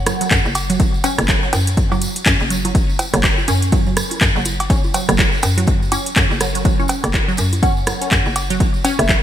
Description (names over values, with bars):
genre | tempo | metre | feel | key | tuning
minimal techno | 123 BPM | 4/4 | swing 59% on 16ths | unclear | A4 = 442 Hz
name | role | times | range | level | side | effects
soft synth bell | melody | 0.0-0.3, 7.6-9.2 s | E5 to F#5 | -26 LUFS | right 1 dB | chorus, phaser, ping-pong delay
hollow knocking FM bass | bass | 0.0-9.2 s | F#1 to F#2 | -21 LUFS | equal | sidechain pumping
resonant blip pluck | riff | 0.1-9.2 s | F#3 to C#4 | -23 LUFS | right 2 dB | phaser, sidechain pumping, digital delay
house drum kit | drums | 0.1-9.2 s | handclaps, hi-hat | -21 LUFS | equal | overdrive, gated reverb
electronic rim click, congas and cowbell | percussion | 0.1-9.1 s | none | -25 LUFS | right 2 dB | gated reverb, ping-pong delay
tambourine | percussion | 0.1-9.2 s | none | -28 LUFS | right 1 dB | none
electronic kick drum | drums | 0.3-9.2 s | none | -18 LUFS | equal | overdrive
room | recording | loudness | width
light reverb | bright 1980s-style digital production | -14 LUFS | side -11 dB against mid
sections
0.0-9.2 A section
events
none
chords
none